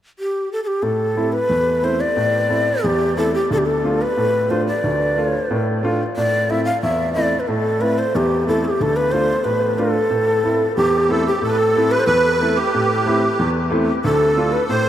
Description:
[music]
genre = klezmer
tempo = 91 BPM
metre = 2/4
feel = straight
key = A minor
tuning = A4 = 440 Hz
[part]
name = breathy mellow shakuhachi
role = melody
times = 0.2-14.9 s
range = G4 to F5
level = -18 LUFS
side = equal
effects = none
[part]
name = warm upright piano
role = accompaniment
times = 0.8-14.9 s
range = D2 to F4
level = -20 LUFS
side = equal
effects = none
[part]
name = musette accordion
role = second line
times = 10.8-14.9 s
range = G4 to C5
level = -20 LUFS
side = right 2 dB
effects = none
[sound]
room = wet huge ambient reverb, RT60 8.1 s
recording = in a vast, echoing space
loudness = -16 LUFS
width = side -11 dB against mid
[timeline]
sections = 0.8-11.4 A section; 11.4-14.9 A section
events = none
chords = 0.0 N.C.; 0.8 Am; 3.5 Dm; 6.2 Am; 8.8 Dm; 10.1 Am; 14.0 Dm

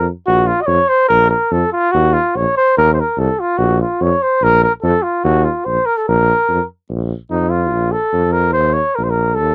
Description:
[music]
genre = balkan folk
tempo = 145 BPM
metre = 2/4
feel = swing 53% on 16ths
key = Bb harmonic minor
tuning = A4 = 440 Hz
[part]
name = mellow flugelhorn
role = melody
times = 0.0-9.5 s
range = Eb4 to Eb5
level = -16 LUFS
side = equal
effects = none
[part]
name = warm tuba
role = bass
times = 0.0-9.5 s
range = Bb1 to F2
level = -20 LUFS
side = equal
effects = none
[sound]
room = little or no reverb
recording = dry, close 1970s-style studio recording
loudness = -15 LUFS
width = mono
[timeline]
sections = 0.3-6.9 A section; 6.9-9.5 B section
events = flugelhorn solo 6.9-9.5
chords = 0.3 Bb5; 1.9 Eb5; 3.6 Bb5; 5.2 Eb5; 6.1 Bb5; 8.6 Eb5

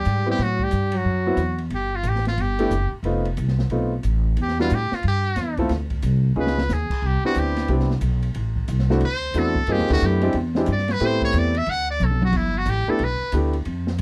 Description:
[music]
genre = jazz, small-group swing and bop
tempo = 181 BPM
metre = 4/4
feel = swing 64% on 8ths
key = G major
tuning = A4 = 438 Hz
[part]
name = trumpet with metal mute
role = melody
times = 0.0-13.4 s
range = E4 to F#5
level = -28 LUFS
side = equal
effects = none
[part]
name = breathy alto saxophone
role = second line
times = 0.0-1.6 s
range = F#3 to G3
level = -29 LUFS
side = equal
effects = none
[part]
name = upright bass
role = bass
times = 0.0-14.0 s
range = F1 to A2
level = -25 LUFS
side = equal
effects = none
[part]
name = open jazz drum kit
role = drums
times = 0.0-14.0 s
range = crash cymbal, hi-hat, kick drum, ride cymbal, snare drum, toms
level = -33 LUFS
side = equal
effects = none
[part]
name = clear baby grand piano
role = accompaniment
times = 0.3-13.5 s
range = G3 to A4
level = -26 LUFS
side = equal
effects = none
[sound]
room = little or no reverb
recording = dry, close 1970s-style studio recording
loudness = -22 LUFS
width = mono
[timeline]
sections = 0.0-1.7 A section; 1.7-12.3 B section; 12.3-14.0 B section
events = muted trumpet solo 1.7-14.0; drum fill 6.4-6.7, 12.0-12.3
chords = 0.4 Gsus2; 1.1 Esus2; 1.7 Gsus2; 3.0 F7#11; 4.4 Em; 5.7 Csus2; 6.4 C#9; 7.0 Cmaj9; 8.4 Am; 9.0 D7; 9.7 G69; 10.3 E7alt; 11.0 Am7; 11.7 Bm7; 12.3 G69

